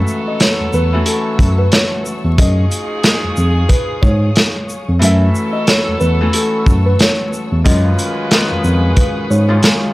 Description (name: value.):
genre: hip hop, boom-bap hip-hop.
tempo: 91 BPM.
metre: 4/4.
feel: swing 59% on 16ths.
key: F# dorian.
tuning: A4 = 440 Hz.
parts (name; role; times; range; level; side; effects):
dark upright piano; melody; 0.0-9.9 s; A4 to E5; -22 LUFS; equal; high-pass filter, low-pass filter, analog delay.
Celtic harp; accompaniment; 0.0-9.9 s; F#2 to F#4; -20 LUFS; left 1 dB; high-pass filter, low-pass filter.
muted studio string section; sustained chords; 0.0-9.9 s; G#4 to E6; -29 LUFS; left 2 dB; high-pass filter, low-pass filter.
edgy saxophone section; stabs; 0.0-9.9 s; E#3 to B4; -25 LUFS; equal; high-pass filter, low-pass filter, analog delay.
crunchy breakbeat drum kit; drums; 0.1-9.8 s; hi-hat, kick drum, shaker, snare drum; -14 LUFS; equal; none.
tine electric piano; bass; 0.6-9.6 s; E2 to G#2; -14 LUFS; equal; none.
room: little or no reverb.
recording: dry, gritty hardware recording, vinyl crackle.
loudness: -12 LUFS.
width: side -19 dB against mid.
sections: 0.0-9.9 A section.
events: kick muted 5.0-6.3.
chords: 0.0 F#m7; 2.4 C#add9; 5.0 F#m7; 7.7 C#add9.